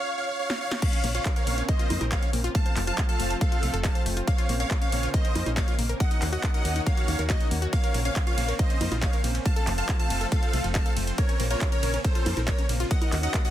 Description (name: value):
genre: uplifting trance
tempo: 139 BPM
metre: 4/4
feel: straight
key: Bb harmonic minor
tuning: A4 = 442 Hz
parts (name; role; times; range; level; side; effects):
- dense compressed supersaw; melody; 0.0-13.5 s; Gb4 to A5; -32 LUFS; right 1 dB; sidechain pumping, digital delay
- punchy analog drum machine; drums; 0.5-13.5 s; congas, crash cymbal, handclaps, hi-hat, ride cymbal, snare drum; -32 LUFS; equal; none
- plucky unison lead; second line; 0.8-13.5 s; C5 to A5; -36 LUFS; equal; phaser, sidechain pumping, digital delay
- lush unison pad; sustained chords; 0.8-13.5 s; Db3 to Gb4; -35 LUFS; right 1 dB; chorus, sidechain pumping
- wide unison pluck; arpeggios; 0.8-13.5 s; A3 to C5; -35 LUFS; left 4 dB; sidechain pumping, digital delay
- electronic kick drum; drums; 0.8-13.4 s; none; -25 LUFS; equal; overdrive, high-pass filter on kick
- solid FM bass; bass; 1.0-13.3 s; F1 to F2; -28 LUFS; equal; sidechain pumping
room: little or no reverb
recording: dense, heavily limited modern master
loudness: -23 LUFS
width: side -12 dB against mid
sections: 0.8-13.5 A section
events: break 0.0-0.8; drum fill 0.5-0.8; drop 0.8-13.5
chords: 0.0 N.C.; 0.8 Bbmadd9; 2.5 F; 4.3 Bbmadd9; 6.0 Ebm7; 7.7 Bbmadd9; 9.5 F; 11.2 Bbmadd9; 12.9 Ebm7